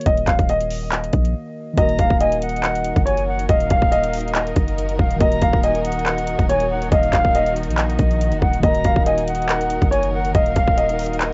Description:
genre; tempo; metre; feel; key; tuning
hip hop, trap; 140 BPM; 4/4; half-time; Eb minor; A4 = 440 Hz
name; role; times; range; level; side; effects
dark baby grand piano; melody; 0.0-11.3 s; Db5 to F5; -24 LUFS; equal; low-pass filter, tape echo
muted felt-like synth keys; accompaniment; 0.0-11.3 s; Eb3 to Bb4; -32 LUFS; equal; chorus, low-pass filter, cassette tape
trap drum kit; drums; 0.0-11.3 s; handclaps, hi-hat, kick drum; -23 LUFS; equal; cassette tape
warm 808-style bass; bass; 0.1-11.3 s; Eb1 to Bb1; -25 LUFS; equal; none
silver concert flute; second line; 1.8-11.3 s; Eb5 to Bb5; -28 LUFS; equal; cassette tape, tape echo
dark symphonic string section; sustained chords; 1.8-11.3 s; Eb3 to Bb4; -32 LUFS; equal; cassette tape
room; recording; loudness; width
light reverb; home recording on cassette, nothing above 7.7 kHz; -19 LUFS; mono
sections
0.0-1.8 A section; 1.8-11.3 B section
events
break 1.3-1.8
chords
0.0 Ebm

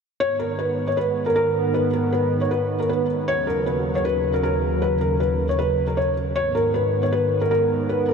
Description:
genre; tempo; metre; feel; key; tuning
hip hop; 156 BPM; 4/4; half-time; G# minor; A4 = 436 Hz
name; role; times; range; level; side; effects
felt-muted upright piano; melody; 0.2-8.1 s; A#4 to C#5; -21 LUFS; equal; wide subtle chorus, ping-pong delay
warm analog pad; sustained chords; 0.2-8.1 s; D#2 to B3; -24 LUFS; right 1 dB; chorus
room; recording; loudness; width
wet huge ambient reverb, RT60 5.3 s; dreamy mix soaked in reverb; -19 LUFS; side -6 dB against mid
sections
0.2-8.1 A section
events
none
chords
0.2 G#m; 3.3 D#m7; 6.4 G#m

